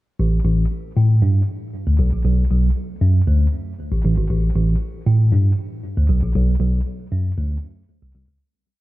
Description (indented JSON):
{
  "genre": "funk",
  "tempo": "117 BPM",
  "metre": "4/4",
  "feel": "straight",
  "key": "unclear",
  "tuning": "A4 = 440 Hz",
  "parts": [
    { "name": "mellow tine electric piano", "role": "solo", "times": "0.2-8.4 s", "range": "G#1 to A2", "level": "-16 LUFS", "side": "equal", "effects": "slow stereo tremolo, tape echo" }
  ],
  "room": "little or no reverb",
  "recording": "none",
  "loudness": "-17 LUFS",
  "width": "side -17 dB against mid",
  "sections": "0.2-8.4 breakdown",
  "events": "fade-out 6.3-8.4",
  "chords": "none",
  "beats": "| 0.19 0.71 1.22 1.73 | 2.25 2.76 3.27 3.78 | 4.30 4.81 5.32 5.83 | 6.35 6.86 7.37 7.89"
}